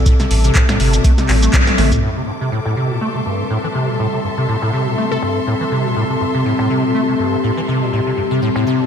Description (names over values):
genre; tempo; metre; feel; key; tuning
acid house; 122 BPM; 4/4; swing 55% on 16ths; A minor; A4 = 440 Hz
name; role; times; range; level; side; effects
dark analog pad; sustained chords; 0.0-8.9 s; G3 to A4; -21 LUFS; left 2 dB; chorus, phaser, sidechain pumping
acid bass, square; riff; 0.0-8.9 s; G2 to A3; -19 LUFS; equal; tube saturation, wide subtle chorus, ping-pong delay
warm symphonic string section; texture; 0.0-8.9 s; A4 to D6; -25 LUFS; left 2 dB; sidechain pumping
electronic kick drum; drums; 0.1-2.0 s; none; -14 LUFS; equal; overdrive
punchy analog drum machine; drums; 0.1-8.9 s; finger snaps, handclaps, hi-hat, shaker, snare drum, toms; -20 LUFS; equal; low-pass filter on hats, low-pass filter on perc, low-pass filter on snare, low-pass filter on toms
saturated sub bass; bass; 0.3-2.0 s; G1 to A1; -15 LUFS; equal; sidechain pumping
glassy wavetable pluck; melody; 5.1-5.6 s; A4; -26 LUFS; left 3 dB; chorus, vintage 12-bit sampler grit, ping-pong delay
room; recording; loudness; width
wet lush hall reverb, RT60 1.6 s; dreamy mix soaked in reverb; -14 LUFS; side -8 dB against mid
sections
0.0-2.0 A section; 2.0-8.9 B section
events
drop 0.0-2.0; drum fill 1.5-2.0; band accent 1.5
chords
0.0 Am7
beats
| 0.06 0.55 1.04 1.54 | 2.03 2.52 3.01 3.50 | 4.00 4.49 4.98 5.47 | 5.96 6.45 6.95 7.44 | 7.93 8.42